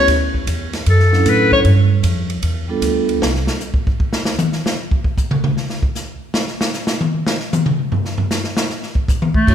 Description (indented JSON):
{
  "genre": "jazz, small-group swing and bop",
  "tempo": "153 BPM",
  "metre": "4/4",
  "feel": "swing 67% on 8ths",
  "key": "unclear",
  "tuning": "A4 = 439 Hz",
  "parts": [
    { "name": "bright clarinet", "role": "melody", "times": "0.0-1.6, 9.3-9.5 s", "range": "A3 to C#5", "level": "-16 LUFS", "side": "left 2 dB", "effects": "none" },
    { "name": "vibraphone with medium mallets", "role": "accompaniment", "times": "0.0-3.2, 9.5 s", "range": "F#3 to C#5", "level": "-20 LUFS", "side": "right 3 dB", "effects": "none" },
    { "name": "upright bass", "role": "bass", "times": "0.0-3.5, 9.5 s", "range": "C2 to A2", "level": "-16 LUFS", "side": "right 1 dB", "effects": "none" },
    { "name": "open jazz drum kit", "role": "drums", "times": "0.1-9.5 s", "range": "crash cymbal, hi-hat, kick drum, ride cymbal, snare drum, toms", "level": "-18 LUFS", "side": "equal", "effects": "none" },
    { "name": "breathy trombone", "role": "second line", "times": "9.5 s", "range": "D4", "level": "-31 LUFS", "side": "right 10 dB", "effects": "none" }
  ],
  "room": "moderate scoring stage reverb, RT60 1.8 s",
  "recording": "recorded in a church or concert hall",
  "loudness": "-15 LUFS",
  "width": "side -9 dB against mid",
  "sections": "0.0-9.5 A section",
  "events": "clarinet solo 0.0-9.5; drum solo 3.2-9.5",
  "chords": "0.1 Dmaj9; 1.6 G9; 3.2 N.C."
}